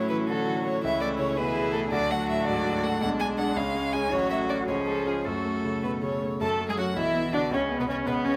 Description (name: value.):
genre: quick classical-period movement for piano quintet.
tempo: 109 BPM (dotted quarters).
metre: 6/8.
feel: straight.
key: F# minor.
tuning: A4 = 440 Hz.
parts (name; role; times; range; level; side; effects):
clear violin; melody; 0.0-8.4 s; F#4 to A5; -33 LUFS; equal; none.
clear violin; second line; 0.0-8.4 s; B3 to A4; -35 LUFS; equal; none.
rich cello; second line; 0.0-8.4 s; B2 to A4; -36 LUFS; equal; none.
clear grand piano; accompaniment; 0.0-8.4 s; A1 to G#4; -32 LUFS; equal; none.
clear viola; accompaniment; 0.0-8.4 s; E3 to A4; -35 LUFS; equal; none.
room: light reverb.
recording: close, detailed microphones.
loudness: -27 LUFS.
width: mono.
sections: 0.0-6.4 A section; 6.4-8.4 B section.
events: none.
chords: 0.0 A; 0.8 A/C#; 1.9 D; 3.0 G#dim/B; 3.6 C#; 4.1 F#m/A; 4.7 C#; 5.3 F#m; 7.0 Bm; 7.5 Bsus2/C#.